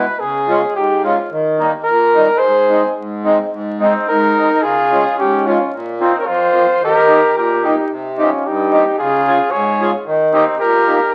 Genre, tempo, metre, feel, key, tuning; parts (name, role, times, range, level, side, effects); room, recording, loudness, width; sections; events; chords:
alpine folk, alpine dance band; 110 BPM; 2/4; straight; A4 = 441 Hz
warm flugelhorn; melody; 0.0-11.1 s; Eb4 to Db5; -18 LUFS; equal
accordion; accompaniment; 0.0-11.0 s; F2 to Ab4; -19 LUFS; equal
bright trumpet; second line; 2.4-11.1 s; C4 to Bb4; -21 LUFS; equal
wet studio reverb, RT60 0.9 s; very old 78 rpm record, vinyl crackle; -15 LUFS; mono
0.0-11.1 A section
0.2 Db; 1.3 Eb; 2.4 Ab; 4.6 Db; 5.7 Bbsus2; 6.8 Eb; 7.9 Cm; 9.0 Db; 10.0 Eb